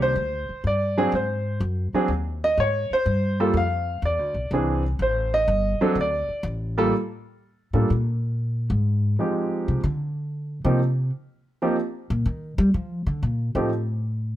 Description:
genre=jazz piano trio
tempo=124 BPM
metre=4/4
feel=swing 68% on 8ths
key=unclear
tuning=A4 = 439 Hz
part: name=warm concert grand piano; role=melody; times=0.0-13.7 s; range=Eb3 to F5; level=-23 LUFS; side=right 1 dB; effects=none
part: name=upright bass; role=bass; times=0.0-14.4 s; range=G1 to G3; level=-24 LUFS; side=equal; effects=none
room=light reverb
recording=none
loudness=-22 LUFS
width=side -13 dB against mid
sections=0.0-6.9 A section; 6.9-14.4 A section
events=grand piano solo 0.0-6.9; upright bass solo 6.9-14.4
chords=0.0 Ebmaj7 (rootless); 1.1 Ab7; 3.1 G7(no3); 4.0 E7b13; 5.0 Am7b5; 6.0 D5; 6.9 N.C.; 8.9 Fm9; 9.8 Csus2; 10.8 Eb6; 12.7 C7sus2 (rootless); 13.7 N.C.

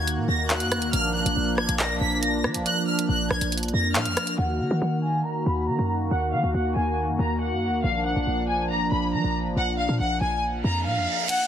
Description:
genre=hip hop, drill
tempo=139 BPM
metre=4/4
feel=half-time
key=Eb harmonic minor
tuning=A4 = 439 Hz
part: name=warm studio violin section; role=melody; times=0.0-11.5 s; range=F5 to Cb7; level=-27 LUFS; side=left 1 dB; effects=low-pass filter, tape echo
part: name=warm analog pad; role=sustained chords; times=0.0-11.3 s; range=Eb3 to Gb4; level=-27 LUFS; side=equal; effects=chorus, low-pass filter
part: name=short 808-style bass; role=bass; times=0.0-11.1 s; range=Ab1 to F3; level=-27 LUFS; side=equal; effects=none
part: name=drill drum kit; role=drums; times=0.1-4.4, 11.3-11.4 s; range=crash cymbal, handclaps, hi-hat, rim click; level=-27 LUFS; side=equal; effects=none
part: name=reverse cymbal and downlifter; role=sound effects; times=10.6-11.5 s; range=none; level=-30 LUFS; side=right 5 dB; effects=none
room=light reverb, digital ambience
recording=heavily compressed radio sound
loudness=-22 LUFS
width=side -9 dB against mid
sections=0.0-4.4 A section; 4.4-11.3 B section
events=filter sweep 4.4-11.3; reverse cymbal 10.6-11.3; kick muted 11.3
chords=0.0 Ebm; 0.9 Bb; 4.4 Ebm; 7.8 Bb

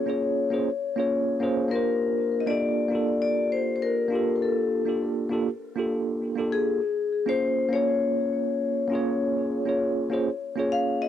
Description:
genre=chillout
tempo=100 BPM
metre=4/4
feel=swing 53% on 16ths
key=unclear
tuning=A4 = 442 Hz
part: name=vibraphone with medium hard mallets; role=melody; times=0.0-11.1 s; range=Ab4 to F5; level=-26 LUFS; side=left 6 dB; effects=cassette tape, analog delay
part: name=bell-like tine electric piano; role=accompaniment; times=0.0-11.1 s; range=Bb3 to Db5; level=-26 LUFS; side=right 2 dB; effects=auto-pan, cassette tape
room=wet booth ambience, RT60 0.1 s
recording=home recording on cassette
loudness=-23 LUFS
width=side -10 dB against mid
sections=0.0-11.1 A section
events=none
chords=0.0 Bbm9; 2.0 Gm9; 6.8 Bbm9

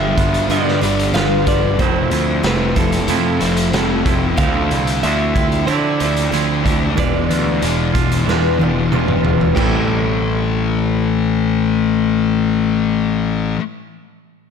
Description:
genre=rock, shoegaze and dream pop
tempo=92 BPM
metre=4/4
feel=straight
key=A minor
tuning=A4 = 440 Hz
part: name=direct-recorded clean electric guitar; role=melody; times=0.0-13.5 s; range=A4 to F5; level=-25 LUFS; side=right 1 dB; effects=spring reverb, tape echo
part: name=picked twelve-string acoustic guitar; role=arpeggios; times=0.0-10.4 s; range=E4 to A5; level=-26 LUFS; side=left 2 dB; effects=lush chorus, tape echo
part: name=thick fuzz guitar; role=riff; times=0.0-13.6 s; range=E2 to D4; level=-19 LUFS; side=left 11 dB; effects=distortion, lush chorus
part: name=twangy electric guitar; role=riff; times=0.0-13.6 s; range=G2 to F4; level=-22 LUFS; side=right 13 dB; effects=reverse reverb
part: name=fuzz picked electric bass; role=bass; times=0.0-13.6 s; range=E1 to D3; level=-20 LUFS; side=right 1 dB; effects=overdrive
part: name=raw garage drum kit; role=drums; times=0.2-9.7 s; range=crash cymbal, hi-hat, kick drum, snare drum, toms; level=-21 LUFS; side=right 1 dB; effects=none
room=light reverb, small room ambience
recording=none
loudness=-14 LUFS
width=side -6 dB against mid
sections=0.0-9.6 A section; 9.6-12.2 B section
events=drum fill 8.3-9.6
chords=0.0 G7; 1.8 Fmaj7; 4.4 Dm9; 7.0 E7b9; 9.6 Am7

